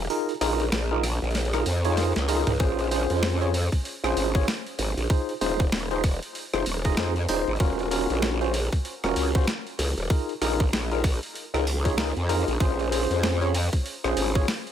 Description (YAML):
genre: glitch hop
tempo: 96 BPM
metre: 4/4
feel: swing 60% on 16ths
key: Bb minor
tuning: A4 = 439 Hz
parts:
  - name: growl bass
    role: bass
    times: 0.0-14.5 s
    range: Eb1 to F2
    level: -26 LUFS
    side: equal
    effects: chorus
  - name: tine electric piano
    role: stabs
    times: 0.1-14.5 s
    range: Db4 to Eb5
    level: -28 LUFS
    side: equal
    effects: medium stereo tremolo, sidechain pumping, dub echo
  - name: boom bap sampler-style drum kit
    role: drums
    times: 0.1-14.7 s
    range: hi-hat, rim click, snare drum, toms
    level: -31 LUFS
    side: equal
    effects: overdrive
  - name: electronic kick drum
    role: drums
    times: 2.6-14.5 s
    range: none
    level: -23 LUFS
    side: equal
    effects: none
room: digital ambience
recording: none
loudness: -23 LUFS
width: side -9 dB against mid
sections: 0.0-14.7 A section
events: kick drops out 0.1-2.6; drum fill 2.0-2.6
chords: 0.1 Db6; 2.6 Bbm9; 5.1 Fm7; 7.6 Ebm7; 10.1 Db6; 12.6 Bbm9